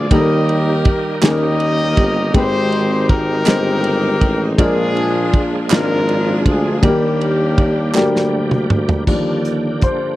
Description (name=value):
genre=slow gospel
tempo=54 BPM (dotted quarters)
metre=6/8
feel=straight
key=Eb major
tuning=A4 = 440 Hz
part: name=mellow horn section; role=melody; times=0.0-8.7 s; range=Bb3 to Eb5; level=-20 LUFS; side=left 2 dB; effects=none
part: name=warm upright piano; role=accompaniment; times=0.0-10.2 s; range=Ab2 to C5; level=-20 LUFS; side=left 2 dB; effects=none
part: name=bright tonewheel organ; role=sustained chords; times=0.0-10.2 s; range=D3 to Ab4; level=-24 LUFS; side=right 4 dB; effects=fast rotary speaker, overdrive, chorus vibrato
part: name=breathy tuba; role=bass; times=0.0-9.9 s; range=G1 to Eb2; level=-19 LUFS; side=right 1 dB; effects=none
part: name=warm soul drum kit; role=drums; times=0.1-10.0 s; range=crash cymbal, hi-hat, kick drum, ride cymbal, snare drum, toms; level=-15 LUFS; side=right 1 dB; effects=none
part: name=group handclap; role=percussion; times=1.2-8.3 s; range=none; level=-23 LUFS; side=right 7 dB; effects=none
room=little or no reverb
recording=dry, close 1970s-style studio recording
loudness=-13 LUFS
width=side -16 dB against mid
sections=0.0-9.1 A section; 9.1-10.2 B section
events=drum fill 8.0-9.1; upright piano solo 9.1-10.2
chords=0.1 Eb; 1.2 Eb7; 2.3 Abmaj7; 4.6 Bb7; 6.8 Ebmaj7